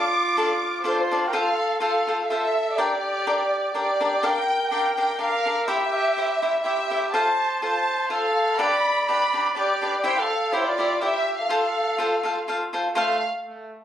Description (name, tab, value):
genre	mexican folk, mariachi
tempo	124 BPM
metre	3/4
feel	straight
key	F major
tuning	A4 = 440 Hz
part	warm studio violin section	melody	0.0-13.2 s	C5 to D6	-24 LUFS	equal	plate reverb
part	clear trumpet	second line	0.0-13.2 s	A3 to D5	-26 LUFS	right 1 dB	tape echo
part	cavaquinho	accompaniment	0.0-13.2 s	D4 to G5	-25 LUFS	left 2 dB	none
room	wet studio reverb, RT60 0.6 s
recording	recorded on a phone in the room, club reverb, compression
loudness	-20 LUFS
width	side -10 dB against mid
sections	0.0-1.3 A section; 1.3-13.0 B section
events	none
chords	0.0 Dm; 1.3 F; 2.8 Gm; 4.2 Bb; 5.7 C; 7.1 F; 8.6 G; 10.0 C; 11.5 F